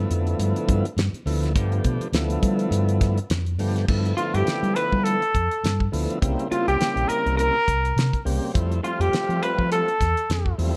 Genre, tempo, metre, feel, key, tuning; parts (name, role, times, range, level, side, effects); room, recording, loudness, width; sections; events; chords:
electric jazz fusion; 103 BPM; 4/4; swing 56% on 16ths; G mixolydian; A4 = 440 Hz
tonewheel organ; accompaniment; 0.0-10.8 s; Db3 to G4; -30 LUFS; equal; slow rotary speaker, overdrive
fingered electric bass; bass; 0.0-10.7 s; Bb1 to G3; -26 LUFS; equal
damped 70s drum kit; drums; 0.1-10.7 s; crash cymbal, hi-hat, kick drum, snare drum; -28 LUFS; equal
warm trumpet; melody; 4.2-10.5 s; F4 to B4; -26 LUFS; equal; slapback echo
vintage hollow-body jazz guitar; second line; 4.2-10.5 s; F4 to B4; -32 LUFS; equal
light reverb; dark, warm production; -23 LUFS; mono
0.0-3.9 A section; 3.9-10.8 B section
0.0 G13; 6.2 C7b9; 8.5 Fmaj9